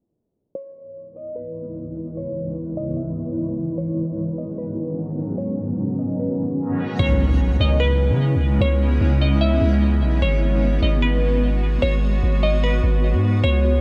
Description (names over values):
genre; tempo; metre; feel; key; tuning
hip hop; 149 BPM; 4/4; half-time; unclear; A4 = 436 Hz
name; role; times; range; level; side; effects
glassy wavetable pluck; melody; 0.6-13.8 s; B4 to E5; -29 LUFS; equal; chorus, low-pass filter, delay
granular cloud pad; sustained chords; 1.5-13.8 s; C#2 to A#5; -26 LUFS; equal; built-in reverb
twinkling granular texture; texture; 1.3-7.0 s; B3 to D#6; -40 LUFS; equal; built-in reverb
long sustained 808-style bass; bass; 7.0-13.8 s; G#1 to C#3; -20 LUFS; equal; none
impact; sound effects; 7.1-8.6 s; none; -32 LUFS; equal; none
room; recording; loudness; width
light reverb; low-pass filter; -20 LUFS; mono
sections
0.6-7.0 A section; 7.0-13.8 B section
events
filter sweep 0.6-7.0; impact 7.0-8.6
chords
0.6 C#m9; 3.8 G#m11; 7.0 C#m7; 10.2 G#m7